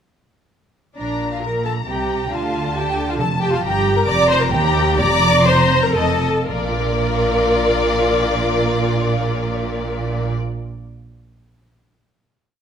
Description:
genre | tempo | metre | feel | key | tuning
quick classical-period movement for string orchestra | 116-136 BPM | 3/4 | straight | Bb major | A4 = 440 Hz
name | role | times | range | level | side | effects
warm symphonic violin section | melody | 1.0-10.3 s | D5 to Bb5 | -23 LUFS | left 7 dB | none
warm symphonic violin section | second line | 1.0-10.3 s | F4 to D6 | -25 LUFS | left 1 dB | none
rich symphonic viola section | accompaniment | 1.0-10.3 s | D4 to D5 | -20 LUFS | equal | none
dark chamber double bass section | bass | 1.0-10.3 s | F1 to Eb2 | -23 LUFS | right 3 dB | none
rich symphonic cello section | bass | 1.0-10.3 s | Eb2 to D3 | -25 LUFS | right 3 dB | none
room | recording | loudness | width
wet recital hall reverb, RT60 1.3 s | none | -16 LUFS | side -8 dB against mid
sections
1.0-6.5 A section; 6.5-9.6 final chord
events
slowing down 3.0-6.5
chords
1.0 Bb69; 2.3 Dm; 3.6 Gm; 4.5 Eb; 5.0 Fsus4; 6.0 F7; 6.5 Bb

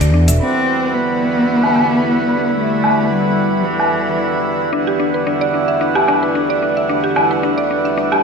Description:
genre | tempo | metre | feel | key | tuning
organic downtempo | 111 BPM | 4/4 | swing 53% on 16ths | E minor | A4 = 440 Hz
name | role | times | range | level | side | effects
bowed-like drone | sustained chords | 0.0-8.2 s | D3 to B4 | -23 LUFS | equal | built-in reverb
mallet-like synth pluck | arpeggios | 0.0-0.4, 4.7-8.2 s | D4 to E5 | -19 LUFS | equal | chorus, ping-pong delay
electronic hi-hat, shaker and woodblock | drums | 0.0-8.2 s | none | -18 LUFS | equal | overdrive, low-pass filter on hats, low-pass filter on perc, low-pass filter on snare, low-pass filter on room
dark cello | melody | 0.4-4.5 s | E3 to C4 | -18 LUFS | left 1 dB | ping-pong delay
pedal harmonium | accompaniment | 0.4-8.2 s | E2 to B4 | -20 LUFS | right 3 dB | ping-pong delay
drifting glass-harmonics texture | texture | 0.9-8.2 s | E4 to E5 | -26 LUFS | left 2 dB | chorus, built-in reverb
room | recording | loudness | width
wet plate reverb, RT60 2.9 s | bright 1980s-style digital production | -13 LUFS | side -5 dB against mid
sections
0.4-8.2 A section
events
none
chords
0.4 Em7

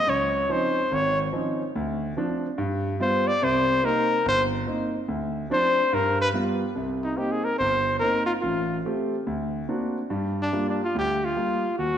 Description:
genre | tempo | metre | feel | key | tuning
jazz | 144 BPM | 4/4 | swing 65% on 8ths | C minor | A4 = 440 Hz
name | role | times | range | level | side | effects
breathy trumpet | melody | 0.0-12.0 s | D4 to Eb5 | -23 LUFS | left 1 dB | none
clear concert grand piano | accompaniment | 0.1-12.0 s | G1 to G4 | -26 LUFS | right 1 dB | none
room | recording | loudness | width
moderate concert hall reverb, RT60 2.0 s | recorded in a church or concert hall, nothing above 10.4 kHz | -22 LUFS | side -9 dB against mid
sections
0.0-6.7 A section; 6.7-12.0 B section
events
trumpet solo 0.0-6.7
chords
0.1 Dbmaj9; 1.7 Dm7; 2.6 G7; 3.4 Cm7; 5.1 Dm7; 5.9 G7; 6.7 Cm7; 8.4 Am7; 9.3 Daug7; 10.1 Gm7

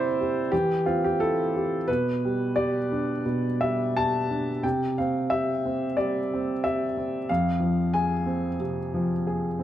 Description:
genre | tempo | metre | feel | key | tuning
neoclassical minimalist piano | 89 BPM | 4/4 | rubato | C major | A4 = 440 Hz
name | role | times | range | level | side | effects
warm upright piano | solo | 0.0-9.6 s | F2 to A5 | -23 LUFS | equal | none
room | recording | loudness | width
light reverb | close, detailed microphones | -23 LUFS | side -12 dB against mid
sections
0.0-9.6 A section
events
none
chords
0.0 C; 1.9 G/B; 4.6 C; 7.3 Fm

